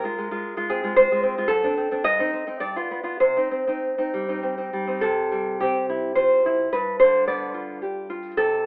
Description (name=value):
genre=romantic piece for solo classical guitar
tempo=96-114 BPM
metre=3/4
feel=rubato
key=C minor, C major from 5.0 s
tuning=A4 = 439 Hz
part: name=nylon-string guitar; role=solo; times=0.0-8.7 s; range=F#2 to Eb5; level=-20 LUFS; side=equal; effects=none
room=moderate stone room reverb, RT60 1.1 s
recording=band playing live in one room, telephone sound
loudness=-20 LUFS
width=side -28 dB against mid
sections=0.0-5.0 A section; 5.0-8.7 B section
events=none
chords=0.0 Fm; 1.5 D7/F#; 2.1 Cm/G; 2.6 G7; 3.2 Cm; 5.0 C; 6.7 G7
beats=0.45 0.98 | 1.51 2.06 2.62 | 3.21 3.84 4.44 | 5.05 5.62 6.17 | 6.72 7.27 7.82 | 8.37